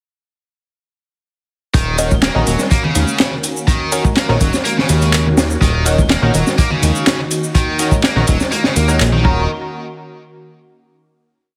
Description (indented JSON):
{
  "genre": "breakbeat, breaks",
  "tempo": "124 BPM",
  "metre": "4/4",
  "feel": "straight",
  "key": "Eb minor",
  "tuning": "A4 = 441 Hz",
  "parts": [
    { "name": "phased analog pad", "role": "sustained chords", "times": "1.7-9.5 s", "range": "Eb3 to Gb4", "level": "-27 LUFS", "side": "equal", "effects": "phaser, chorus, sidechain pumping" },
    { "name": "heavy high-gain guitar", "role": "riff", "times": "1.7-9.5 s", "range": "Db3 to Bb3", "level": "-23 LUFS", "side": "equal", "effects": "distortion, digital delay" },
    { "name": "fat analog bass", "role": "bass", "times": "1.7-9.5 s", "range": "Eb1 to Eb2", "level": "-18 LUFS", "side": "equal", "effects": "tube saturation" },
    { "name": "crunchy breakbeat drum kit", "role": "drums", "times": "1.7-9.3 s", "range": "hi-hat, kick drum, snare drum", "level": "-19 LUFS", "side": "equal", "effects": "none" },
    { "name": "punchy analog drum machine", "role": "drums", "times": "1.7-9.1 s", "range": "handclaps, ride cymbal, shaker", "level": "-25 LUFS", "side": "equal", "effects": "none" },
    { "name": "band-passed chord stab", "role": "stabs", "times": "2.0-9.4 s", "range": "Db4 to Bb4", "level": "-24 LUFS", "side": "equal", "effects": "chorus, phaser, cassette tape, digital delay" },
    { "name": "congas", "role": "percussion", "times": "2.1-9.2 s", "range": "none", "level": "-27 LUFS", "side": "equal", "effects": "none" }
  ],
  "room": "little or no reverb",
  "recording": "heavily compressed radio sound",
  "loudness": "-15 LUFS",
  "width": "mono",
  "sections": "1.7-9.5 drop; 9.5-11.4 final hit",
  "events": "drop 1.7-9.5",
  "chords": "1.7 Ebm7; 9.5 N.C."
}